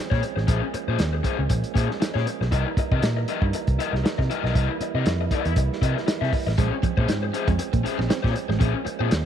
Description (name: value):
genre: funk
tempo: 118 BPM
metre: 4/4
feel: swing 56% on 16ths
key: unclear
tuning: A4 = 437 Hz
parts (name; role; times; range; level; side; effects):
- percussive tonewheel organ; sustained chords; 0.0-9.3 s; E3 to E4; -32 LUFS; right 15 dB; overdrive, stopped rotary speaker
- raw garage guitar; accompaniment; 0.1-9.1 s; Db4 to E5; -28 LUFS; left 11 dB; overdrive
- vintage muted picked electric bass; bass; 0.1-9.3 s; A1 to C3; -24 LUFS; equal; none
- warm soul drum kit; drums; 0.1-9.3 s; hi-hat, kick drum, snare drum; -25 LUFS; equal; none
- clean electric guitar; riff; 6.6-9.1 s; F3 to C4; -32 LUFS; right 13 dB; analog chorus
room: light reverb, small room ambience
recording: 1960s-style stereo with parts hard left and right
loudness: -21 LUFS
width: side -9 dB against mid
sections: 0.0-9.3 A section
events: none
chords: 0.0 Bbm9; 2.5 C7#9; 6.6 Bbm9